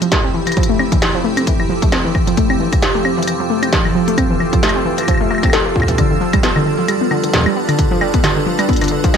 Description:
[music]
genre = IDM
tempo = 133 BPM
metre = 4/4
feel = swing 56% on 16ths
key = F lydian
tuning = A4 = 440 Hz
[part]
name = icy glass pad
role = sustained chords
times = 0.0-9.2 s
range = F3 to B4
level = -19 LUFS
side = right 1 dB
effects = chorus, built-in reverb
[part]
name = warbly dusty pluck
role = arpeggios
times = 0.0-9.2 s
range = D3 to A4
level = -18 LUFS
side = left 1 dB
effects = chorus, ping-pong delay
[part]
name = industrial drum kit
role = drums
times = 0.0-9.2 s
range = claves, hi-hat, snare drum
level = -19 LUFS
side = equal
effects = small room ambience
[part]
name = electronic kick drum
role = drums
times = 0.1-9.1 s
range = none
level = -17 LUFS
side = equal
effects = small room ambience
[sound]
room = light reverb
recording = none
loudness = -13 LUFS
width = side -7 dB against mid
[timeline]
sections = 0.0-9.2 A section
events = none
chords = 0.0 Fmaj7; 6.0 G7

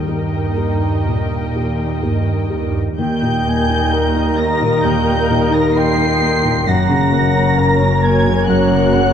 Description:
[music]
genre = cinematic, emotional film score for orchestra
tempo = 61-67 BPM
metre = 4/4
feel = rubato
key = Eb major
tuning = A4 = 440 Hz
[part]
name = muted studio violin section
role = second line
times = 0.0-9.1 s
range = Bb4 to G5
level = -27 LUFS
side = left 3 dB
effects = none
[part]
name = dark baby grand piano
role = accompaniment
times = 0.0-9.1 s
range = Eb2 to Bb4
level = -20 LUFS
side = equal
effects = none
[part]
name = muted studio viola section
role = accompaniment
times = 0.0-9.1 s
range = Bb3 to Bb4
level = -24 LUFS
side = right 2 dB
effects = none
[part]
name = concert harp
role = arpeggios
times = 0.0-9.1 s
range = Gb2 to Eb5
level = -23 LUFS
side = left 7 dB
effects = none
[part]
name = muted studio double bass section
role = bass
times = 0.0-9.1 s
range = Gb1 to Eb2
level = -23 LUFS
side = right 3 dB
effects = none
[part]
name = warm clarinet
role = second line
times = 0.1-2.0 s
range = Eb4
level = -30 LUFS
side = right 4 dB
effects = none
[part]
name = muted chamber cello section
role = bass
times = 0.1-9.1 s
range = Eb2 to Bb2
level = -22 LUFS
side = right 2 dB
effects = none
[part]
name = muted studio violin section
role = melody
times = 3.0-9.1 s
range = Gb6 to C7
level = -22 LUFS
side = left 1 dB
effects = none
[part]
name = mellow cor anglais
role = second line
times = 3.0-9.1 s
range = Bb4 to Ab5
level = -22 LUFS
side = equal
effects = none
[part]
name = mellow hollow small flute group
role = second line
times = 3.0-9.1 s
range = Gb5 to C6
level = -24 LUFS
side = right 3 dB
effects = none
[part]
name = mellow French horn section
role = sustained chords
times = 3.0-9.1 s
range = Gb3 to Db4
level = -22 LUFS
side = left 2 dB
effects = none
[sound]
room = moderate scoring stage reverb, RT60 1.6 s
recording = dark, warm production, nothing above 10.3 kHz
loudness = -13 LUFS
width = side -8 dB against mid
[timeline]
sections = 0.0-3.0 A section; 3.0-9.1 A section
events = none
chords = 0.0 Eb; 6.7 Gb

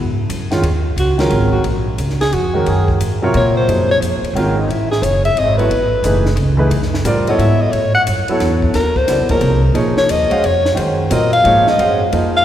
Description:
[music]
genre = modal jazz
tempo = 177 BPM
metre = 3/4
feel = swing 64% on 8ths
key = Eb dorian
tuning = A4 = 440 Hz
[part]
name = upright bass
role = bass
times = 0.0-12.4 s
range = Gb1 to Bb2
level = -17 LUFS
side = equal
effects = none
[part]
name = compact cocktail drum kit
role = drums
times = 0.3-12.2 s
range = hi-hat, kick drum, ride cymbal, snare drum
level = -26 LUFS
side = left 1 dB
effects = none
[part]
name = clear grand piano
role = accompaniment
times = 0.5-12.4 s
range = C3 to F5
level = -18 LUFS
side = right 1 dB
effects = none
[part]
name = warm alto saxophone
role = melody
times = 1.0-12.4 s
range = Eb4 to Gb5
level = -16 LUFS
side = left 1 dB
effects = none
[sound]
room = wet concert hall reverb, RT60 2.6 s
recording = recorded in a church or concert hall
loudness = -12 LUFS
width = side -11 dB against mid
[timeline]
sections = 0.6-12.4 A section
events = alto saxophone solo 0.6-12.4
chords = 0.0 Gbsus2; 0.6 Ebm9; 4.7 Gbm9; 8.7 Ebm9

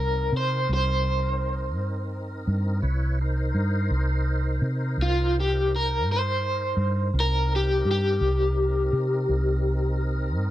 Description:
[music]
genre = slow blues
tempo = 56 BPM (dotted quarters)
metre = 12/8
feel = straight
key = C minor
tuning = A4 = 440 Hz
[part]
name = overdriven semi-hollow guitar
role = melody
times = 0.0-10.0 s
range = F4 to C5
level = -26 LUFS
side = left 1 dB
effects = tremolo
[part]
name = tonewheel organ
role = sustained chords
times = 0.0-10.5 s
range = C4 to Db5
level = -35 LUFS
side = equal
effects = slow rotary speaker, overdrive, chorus vibrato
[part]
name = vintage muted fingered electric bass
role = bass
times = 0.0-10.5 s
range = C2 to C3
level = -24 LUFS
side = equal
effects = none
[sound]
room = little or no reverb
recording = dry, close 1970s-style studio recording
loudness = -22 LUFS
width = side -14 dB against mid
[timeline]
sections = 0.0-10.5 A section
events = none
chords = 0.0 Cm7

